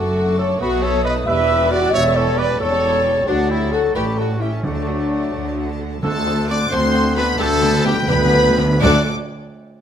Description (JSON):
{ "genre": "quick classical-period movement for symphony orchestra", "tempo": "82-91 BPM (dotted quarters)", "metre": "6/8", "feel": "straight", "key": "D major", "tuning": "A4 = 440 Hz", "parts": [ { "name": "rich studio violin section", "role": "melody", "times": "0.0-9.1 s", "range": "E5 to D6", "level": "-27 LUFS", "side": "left 1 dB", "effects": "none" }, { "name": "dark clarinet", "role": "second line", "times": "0.0-9.0 s", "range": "A3 to D5", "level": "-27 LUFS", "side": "left 1 dB", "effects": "none" }, { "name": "mellow concert flute", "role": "second line", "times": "0.0-9.1 s", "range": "D5 to G6", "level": "-30 LUFS", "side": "left 1 dB", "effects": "none" }, { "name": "warm oboe", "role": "second line", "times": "0.0-9.0 s", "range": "B4 to D#6", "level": "-32 LUFS", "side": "equal", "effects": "none" }, { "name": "warm studio violin section", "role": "second line", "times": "0.0-9.1 s", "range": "A3 to D5", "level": "-30 LUFS", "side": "left 1 dB", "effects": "none" }, { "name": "dark studio viola section", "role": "accompaniment", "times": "0.0-9.1 s", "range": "A3 to A4", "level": "-30 LUFS", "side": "equal", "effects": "none" }, { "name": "mellow bassoon", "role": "accompaniment", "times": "0.0-9.0 s", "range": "D3 to A3", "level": "-31 LUFS", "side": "right 1 dB", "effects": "none" }, { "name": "dark French horn section", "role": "sustained chords", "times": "0.0-9.0 s", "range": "G3 to E5", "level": "-21 LUFS", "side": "left 1 dB", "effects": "none" }, { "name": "clear trumpet", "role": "stabs", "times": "0.0-9.0 s", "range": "A3 to D5", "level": "-26 LUFS", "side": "right 2 dB", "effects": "none" }, { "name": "rich studio double bass section", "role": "bass", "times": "0.0-9.1 s", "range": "E1 to D2", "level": "-23 LUFS", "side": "equal", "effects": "none" }, { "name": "warm studio cello section", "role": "bass", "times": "0.0-9.1 s", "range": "D2 to D3", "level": "-24 LUFS", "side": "right 1 dB", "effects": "none" }, { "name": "timpani", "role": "percussion", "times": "4.6-9.0 s", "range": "D3", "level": "-24 LUFS", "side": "right 2 dB", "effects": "none" } ], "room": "wet stone room reverb, RT60 1.2 s", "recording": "none", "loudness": "-15 LUFS", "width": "side -9 dB against mid", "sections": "0.0-6.0 A section; 6.0-8.8 B section", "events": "slowing down 5.3-8.8; timpani fill 7.4-8.8", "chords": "0.0 D/F#; 0.6 B7; 1.3 Em7; 1.9 A7/E; 3.3 D; 4.0 A7; 4.6 D; 6.0 D7; 7.4 G/D; 8.8 D" }